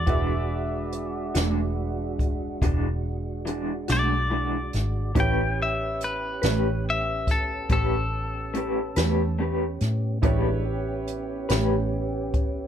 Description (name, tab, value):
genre	slow blues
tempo	47 BPM (dotted quarters)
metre	12/8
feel	straight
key	unclear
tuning	A4 = 439 Hz
part	clean electric guitar	melody	0.0-9.4 s	A4 to G5	-29 LUFS	left 2 dB	slapback echo, plate reverb
part	clear upright piano	accompaniment	0.0-12.7 s	E4 to E5	-34 LUFS	right 5 dB	none
part	tonewheel organ	sustained chords	0.0-12.7 s	G#3 to G4	-34 LUFS	right 2 dB	overdrive, slow rotary speaker
part	vintage muted fingered electric bass	bass	0.0-12.7 s	E1 to A2	-28 LUFS	equal	none
part	electric guitar through a small old amp	accompaniment	0.1-11.8 s	E3 to B4	-28 LUFS	left 1 dB	tremolo
part	jazz brush drum kit	drums	0.1-12.5 s	hi-hat, kick drum, snare drum	-27 LUFS	equal	none
room	light reverb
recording	none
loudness	-23 LUFS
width	side -9 dB against mid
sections	0.0-12.7 A section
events	none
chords	0.0 E9; 5.2 A9